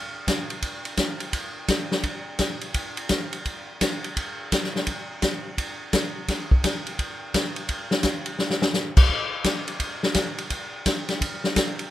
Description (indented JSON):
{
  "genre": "jazz",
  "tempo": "170 BPM",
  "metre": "4/4",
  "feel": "swing 65% on 8ths",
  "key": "none",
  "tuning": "none",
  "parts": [
    { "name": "vintage drum kit", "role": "drums", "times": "0.3-11.8 s", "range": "crash cymbal, hi-hat, kick drum, ride cymbal, snare drum", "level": "-23 LUFS", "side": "left 1 dB", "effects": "none" }
  ],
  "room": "light reverb",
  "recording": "minimal, uncompressed stereo recording",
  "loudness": "-23 LUFS",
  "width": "side -14 dB against mid",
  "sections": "0.0-9.1 A section; 9.1-11.9 B section",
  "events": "drum fill 8.4-8.7",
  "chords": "none"
}